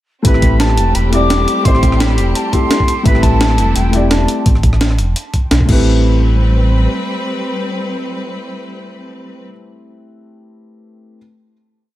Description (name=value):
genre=liquid drum and bass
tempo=171 BPM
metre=4/4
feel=swing 54% on 16ths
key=A minor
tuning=A4 = 440 Hz
part: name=mellow concert flute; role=melody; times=0.2-4.5 s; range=G5 to D6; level=-20 LUFS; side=equal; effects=dub echo
part: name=dark grand piano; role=accompaniment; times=0.2-11.2 s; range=A3 to D5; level=-19 LUFS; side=left 2 dB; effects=none
part: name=bright chamber string section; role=sustained chords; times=0.2-9.4 s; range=G3 to B4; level=-23 LUFS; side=left 1 dB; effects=sidechain pumping
part: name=sub bass with octave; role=bass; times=0.2-6.9 s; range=E1 to B1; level=-13 LUFS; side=equal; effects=none
part: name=breakbeat sampler-style drum kit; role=drums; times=0.2-5.8 s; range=crash cymbal, hi-hat, rim click, snare drum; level=-19 LUFS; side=right 1 dB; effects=none
part: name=electronic kick drum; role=drums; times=0.2-5.8 s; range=none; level=-13 LUFS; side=equal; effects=none
room=little or no reverb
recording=none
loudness=-11 LUFS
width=side -14 dB against mid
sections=0.2-5.9 drop; 5.9-8.7 final hit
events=drop 0.2-5.9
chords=0.2 Am11/E; 5.7 Am9